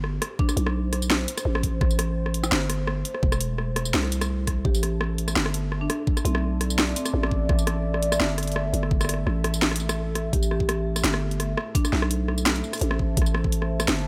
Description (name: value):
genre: half-time drum and bass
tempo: 169 BPM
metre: 4/4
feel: half-time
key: A minor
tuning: A4 = 439 Hz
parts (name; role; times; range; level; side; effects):
- dark analog pad; sustained chords; 0.3-14.1 s; A3 to E5; -36 LUFS; equal; chorus, phaser, sidechain pumping
- growling 808-style bass; bass; 0.0-14.1 s; E1 to C2; -28 LUFS; equal; none
- drum and bass drum kit; drums; 0.0-14.0 s; hi-hat, rim click, snare drum, tambourine; -29 LUFS; equal; overdrive
- marimba with soft mallets; melody; 0.4-0.7, 4.6-7.1, 10.3-12.1 s; C4 to G4; -36 LUFS; equal; dub echo
- electronic kick drum; drums; 0.4-13.5 s; none; -26 LUFS; equal; overdrive
room: light reverb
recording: none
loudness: -25 LUFS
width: mono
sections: 0.0-10.3 A section; 10.3-14.1 A section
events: drop 0.0-10.3, 10.3-14.1; break 10.0-10.3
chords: 0.0 Am